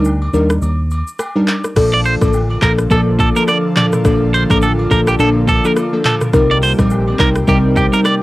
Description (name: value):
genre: afrobeats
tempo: 105 BPM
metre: 4/4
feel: swing 58% on 16ths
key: Bb major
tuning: A4 = 440 Hz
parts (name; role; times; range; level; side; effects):
- glassy digital keys; accompaniment; 0.0-8.1 s; F3 to Bb4; -15 LUFS; left 1 dB; chorus, cassette tape
- vintage muted fingered electric bass; bass; 0.0-7.9 s; A1 to Eb2; -17 LUFS; equal; none
- afro-pop drum kit; drums; 0.0-8.2 s; crash cymbal, handclaps, hi-hat, kick drum, rim click, shaker, toms; -18 LUFS; equal; overdrive, cassette tape
- woodblock and agogo bells; percussion; 0.1-8.2 s; none; -29 LUFS; equal; none
- airy breathy pad; sustained chords; 2.1-8.2 s; C3 to A4; -22 LUFS; equal; chorus, sidechain pumping, cassette tape
- clean electric guitar; riff; 1.9-8.1 s; G4 to D5; -16 LUFS; right 2 dB; cassette tape
room: light reverb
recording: home recording on cassette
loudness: -11 LUFS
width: side -18 dB against mid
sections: 0.0-1.8 A section; 1.8-8.2 B section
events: break 0.0-1.8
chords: 0.0 Ebmaj7; 1.8 Bbmaj7; 6.3 Cm7